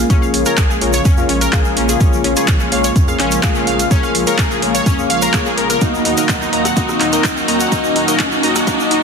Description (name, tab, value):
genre	progressive house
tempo	126 BPM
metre	4/4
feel	straight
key	unclear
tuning	A4 = 439 Hz
part	lush unison pad	sustained chords	0.0-9.0 s	Bb2 to Gb4	-21 LUFS	right 1 dB	chorus, sidechain pumping
part	chorused polysynth	stabs	0.0-9.0 s	Bb3 to F5	-20 LUFS	left 3 dB	sidechain pumping, tape echo
part	saturated sub bass	bass	0.0-9.0 s	Bb1 to F2	-27 LUFS	equal	sidechain pumping
part	riser	sound effects	1.7-9.0 s	none	-24 LUFS	equal	none
part	analog pluck	arpeggios	0.1-9.0 s	Db4 to Bb5	-19 LUFS	left 1 dB	chorus, cassette tape, sidechain pumping, tape echo
part	deep house drum kit	drums	0.1-9.0 s	handclaps, hi-hat, rim click	-20 LUFS	equal	none
part	electronic kick drum	drums	0.1-8.8 s	none	-15 LUFS	equal	none
part	egg shaker	percussion	0.1-8.9 s	none	-27 LUFS	right 5 dB	none
room	light reverb, studio reverb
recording	dense, heavily limited modern master, high-pass filter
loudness	-12 LUFS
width	side -5 dB against mid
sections	0.0-9.0 A section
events	build-up 0.0-9.0; filter sweep on analog polysynth 0.0-9.0; filter sweep on analog synth pad 0.0-9.0; filter sweep 0.0-9.0; riser 1.7-9.0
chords	0.0 Bbm7; 5.8 Ebm